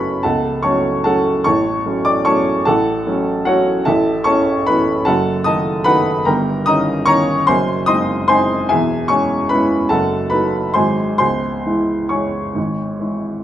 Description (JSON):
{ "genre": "classical, piano waltz", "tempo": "128-158 BPM", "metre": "3/4", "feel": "rubato", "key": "F# minor, C# minor from 3.9 s", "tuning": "A4 = 440 Hz", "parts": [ { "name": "clear upright piano", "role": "solo", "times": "0.0-13.4 s", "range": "C#1 to D#6", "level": "-14 LUFS", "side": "equal", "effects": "none" } ], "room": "moderate recital hall reverb, RT60 1.4 s", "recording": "minimal, uncompressed stereo recording", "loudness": "-14 LUFS", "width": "side -11 dB against mid", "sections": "0.0-13.4 A section", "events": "none", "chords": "0.0 F#m; 1.5 F#m/A; 3.9 A; 5.1 D#dim/F#; 6.3 D#7/G; 7.5 G#7/F#; 8.7 C#m/E; 9.9 D#dim/F#; 10.8 G#7; 11.2 C#m" }